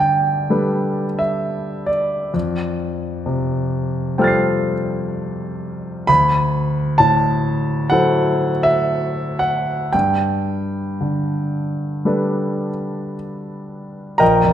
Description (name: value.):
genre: classical, impressionist solo piano.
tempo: 54-68 BPM.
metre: 4/4.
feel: rubato.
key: G major.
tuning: A4 = 441 Hz.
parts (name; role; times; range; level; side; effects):
clear concert grand piano; solo; 0.0-14.5 s; Bb1 to C7; -17 LUFS; equal; none.
room: moderate scoring stage reverb, RT60 1.4 s.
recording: none.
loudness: -17 LUFS.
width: side -10 dB against mid.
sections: 0.0-14.2 A section.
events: none.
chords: 0.0 Gadd9; 2.3 F69; 6.1 D13; 9.9 Gadd9.